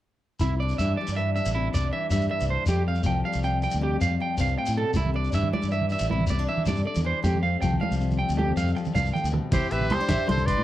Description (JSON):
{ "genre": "highlife guitar band", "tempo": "105 BPM (dotted quarters)", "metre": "12/8", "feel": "straight", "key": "C major", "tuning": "A4 = 440 Hz", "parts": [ { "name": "picked steel-string acoustic guitar", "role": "accompaniment", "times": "0.4-10.6 s", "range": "F2 to E4", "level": "-30 LUFS", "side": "left 6 dB", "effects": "none" }, { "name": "electric guitar at the edge of break-up", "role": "arpeggios", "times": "0.4-10.6 s", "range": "E4 to C6", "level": "-28 LUFS", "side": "right 4 dB", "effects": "spring reverb, slapback echo" }, { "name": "fingered electric bass", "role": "bass", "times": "0.4-10.6 s", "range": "A1 to A2", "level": "-26 LUFS", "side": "equal", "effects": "none" }, { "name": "shekere", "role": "percussion", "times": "0.4-10.5 s", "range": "none", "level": "-31 LUFS", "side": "left 1 dB", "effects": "none" }, { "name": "congas", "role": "percussion", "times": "5.0-10.5 s", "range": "none", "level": "-30 LUFS", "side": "right 4 dB", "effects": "none" }, { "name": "trumpet with metal mute", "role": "melody", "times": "9.5-10.6 s", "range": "G4 to D5", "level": "-28 LUFS", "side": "equal", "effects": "none" }, { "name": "breathy trumpet", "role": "second line", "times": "9.5-10.6 s", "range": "E4 to B4", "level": "-33 LUFS", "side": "left 8 dB", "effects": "none" }, { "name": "dusty soul sampler-style drum kit", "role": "drums", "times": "9.5-10.6 s", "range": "crash cymbal, hi-hat, kick drum, snare drum", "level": "-29 LUFS", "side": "equal", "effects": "none" } ], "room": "little or no reverb", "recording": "dry, close 1970s-style studio recording", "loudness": "-23 LUFS", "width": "side -13 dB against mid", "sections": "0.4-9.5 A section; 9.5-10.6 B section", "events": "drum fill 9.0-9.5", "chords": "0.4 Cadd9; 2.7 Fadd9; 5.0 Cadd9; 7.2 Fsus2; 9.5 Cadd9" }